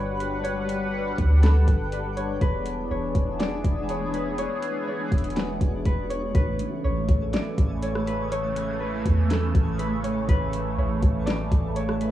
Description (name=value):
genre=hip hop, atmospheric cloud-rap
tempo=122 BPM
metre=4/4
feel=half-time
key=A major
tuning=A4 = 440 Hz
part: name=concert harp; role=melody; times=0.0-12.1 s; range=A4 to D5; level=-32 LUFS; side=left 2 dB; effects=digital delay
part: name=sweeping resonant pad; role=sustained chords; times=0.0-12.1 s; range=C#3 to F#5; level=-29 LUFS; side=equal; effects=chorus, sidechain pumping
part: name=soft 808-style bass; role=bass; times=0.0-12.1 s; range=E1 to E2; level=-26 LUFS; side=equal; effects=none
part: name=twinkling granular texture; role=texture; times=0.0-12.1 s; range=G3 to C#6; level=-38 LUFS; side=right 1 dB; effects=built-in reverb
part: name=smooth R&B drum kit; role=drums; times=0.2-12.1 s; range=hi-hat, kick drum, rim click, snare drum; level=-24 LUFS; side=equal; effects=none
room=digital ambience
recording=worn, warbling old tape, cassette tape, warbly pitch drift, small room ambience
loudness=-22 LUFS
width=side -13 dB against mid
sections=0.0-6.3 A section; 6.3-12.1 B section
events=none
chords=0.0 Gmaj7; 2.4 E7; 6.3 Amaj7